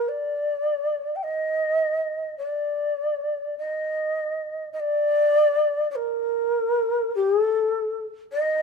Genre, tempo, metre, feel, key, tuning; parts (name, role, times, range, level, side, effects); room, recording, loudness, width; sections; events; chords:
japanese traditional, Japanese chamber music; 51 BPM; 4/4; rubato; A4 = 440 Hz
mellow shakuhachi; solo; 0.0-8.6 s; A4 to G5; -22 LUFS; equal
light reverb; close, detailed microphones; -22 LUFS; side -5 dB against mid
0.0-4.8 A section; 4.8-8.6 B section